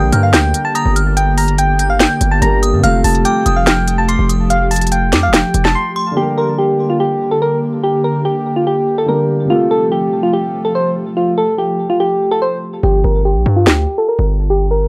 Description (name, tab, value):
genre	hip hop, trap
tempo	144 BPM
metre	4/4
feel	half-time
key	G minor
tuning	A4 = 441 Hz
part	soft electric-piano-like synth keys	melody	0.0-14.9 s	F4 to C6	-18 LUFS	equal	chorus, low-pass filter, tape echo
part	delicate synth tine bell	second line	0.0-6.2 s	C6 to G6	-27 LUFS	equal	chorus, phaser, tape echo
part	dark concert grand piano	accompaniment	0.0-12.9 s	C3 to Bb4	-24 LUFS	equal	low-pass filter
part	airy breathy pad	sustained chords	0.0-12.8 s	D3 to G4	-24 LUFS	equal	chorus
part	distorted 808-style bass	bass	0.0-5.8, 12.8-14.9 s	F1 to G2	-17 LUFS	equal	distortion
part	trap drum kit	drums	0.1-5.7, 13.7-13.8 s	hi-hat, snare drum	-17 LUFS	equal	none
room	light reverb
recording	dark, warm production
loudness	-14 LUFS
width	mono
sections	0.0-6.2 A section; 6.2-12.8 B section; 12.8-14.9 C section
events	break 5.8-6.2; hi-hats muted 12.8-14.9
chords	0.0 Gm; 2.8 Fadd9; 6.2 Gm; 9.5 Fadd9; 12.8 Gm